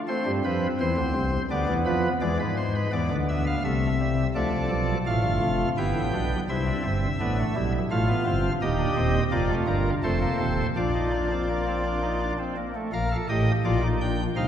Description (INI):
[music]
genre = classical, baroque-style 4-part fugue for pipe organ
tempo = 84 BPM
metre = 3/4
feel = straight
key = D minor, Bb major from 8.6 s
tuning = A4 = 440 Hz
[part]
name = pipe organ, cornet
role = solo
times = 0.1-14.5 s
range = Eb1 to G5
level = -23 LUFS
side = equal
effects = none
[sound]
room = wet church reverb, RT60 2.7 s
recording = heard from further back in the room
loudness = -23 LUFS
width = side -9 dB against mid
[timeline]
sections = 0.0-4.4 A section; 4.4-12.9 B section; 12.9-14.5 C section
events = none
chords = 0.1 Am; 1.5 Bdim/D; 2.2 E7; 3.6 Am/C; 4.4 Dm7; 5.8 G; 6.5 Cmaj7; 7.9 F/A; 8.6 Cm/Eb; 9.3 Bb/F; 10.0 F7; 10.8 Bb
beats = | 0.09 0.80 1.51 | 2.22 2.93 3.65 | 4.36 5.08 5.79 | 6.50 7.21 7.92 | 8.62 9.33 10.04 | 10.77 11.49 12.21 | 12.93 13.65 14.36